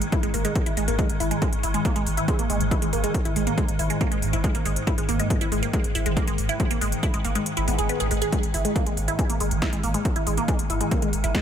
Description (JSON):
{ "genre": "driving peak-time techno", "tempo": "139 BPM", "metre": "4/4", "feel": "straight", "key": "unclear", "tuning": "A4 = 442 Hz", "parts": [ { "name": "swarming drone", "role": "drone", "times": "0.0-11.4 s", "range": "G#2 to D#3", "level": "-30 LUFS", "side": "equal", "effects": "built-in reverb, sidechain pumping" }, { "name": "techno drum kit", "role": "drums", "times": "0.0-11.4 s", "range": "hi-hat, snare drum", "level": "-32 LUFS", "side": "equal", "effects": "studio reverb" }, { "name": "resonant blip pluck", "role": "riff", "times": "0.1-11.4 s", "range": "G#3 to G#4", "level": "-27 LUFS", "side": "right 1 dB", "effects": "phaser, sidechain pumping, digital delay" }, { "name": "electronic kick drum", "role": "drums", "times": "0.1-11.4 s", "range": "none", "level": "-25 LUFS", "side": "equal", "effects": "studio reverb" }, { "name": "saturated sub bass", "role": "bass", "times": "0.2-11.3 s", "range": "G#1", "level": "-28 LUFS", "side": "equal", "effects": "overdrive, sidechain pumping, low-pass filter" }, { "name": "swell", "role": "sound effects", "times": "7.6-8.3 s", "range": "none", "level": "-35 LUFS", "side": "left 4 dB", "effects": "none" } ], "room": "light reverb, digital ambience", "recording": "none", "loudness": "-21 LUFS", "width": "side -9 dB against mid", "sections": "0.0-11.4 A section", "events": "kick drops out 7.5-8.3; swell 7.6-8.3", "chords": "0.0 G#5" }